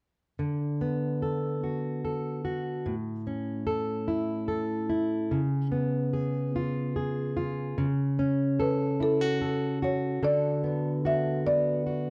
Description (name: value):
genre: pop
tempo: 49 BPM (dotted quarters)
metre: 6/8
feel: straight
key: D major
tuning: A4 = 441 Hz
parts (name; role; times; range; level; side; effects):
- fingerpicked plugged-in steel-string acoustic guitar; accompaniment; 0.4-12.1 s; A2 to A4; -30 LUFS; equal; none
- marimba with medium mallets; melody; 8.6-12.1 s; A4 to E5; -31 LUFS; equal; delay
room: light reverb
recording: dark, warm production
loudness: -29 LUFS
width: mono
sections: 0.4-10.2 A section; 10.2-12.1 B section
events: none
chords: 0.4 D6; 2.9 A; 5.3 C#7; 7.8 F#m/C#; 10.2 D6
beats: | 0.40 1.63 | 2.86 4.09 | 5.32 6.55 | 7.78 9.01 | 10.23 11.46